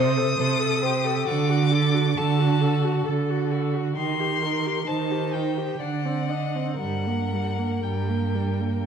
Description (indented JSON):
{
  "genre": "classical, slow romantic movement for string quartet",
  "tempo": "57-68 BPM",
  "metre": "3/4",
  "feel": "rubato",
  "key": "unclear",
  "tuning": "A4 = 440 Hz",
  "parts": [
    { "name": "rich violin", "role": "melody", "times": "0.0-8.9 s", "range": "F#4 to Eb5", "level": "-30 LUFS", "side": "left 12 dB", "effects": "none" },
    { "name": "rich violin", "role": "second line", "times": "0.0-8.9 s", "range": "F#5 to Eb6", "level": "-29 LUFS", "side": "left 4 dB", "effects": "none" },
    { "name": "rich viola", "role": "accompaniment", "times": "0.0-8.9 s", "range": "G3 to C5", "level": "-28 LUFS", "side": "right 2 dB", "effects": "none" },
    { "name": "rich cello", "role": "bass", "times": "0.0-8.7 s", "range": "G2 to Eb3", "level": "-24 LUFS", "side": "right 4 dB", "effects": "none" }
  ],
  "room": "moderate scoring stage reverb, RT60 1.6 s",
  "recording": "dark, warm production",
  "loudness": "-22 LUFS",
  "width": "side -7 dB against mid",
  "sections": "0.0-8.9 A section",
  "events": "none",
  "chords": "0.0 Adim/C; 1.3 D; 4.0 Cm/Eb; 5.8 D7b9; 6.8 Gm"
}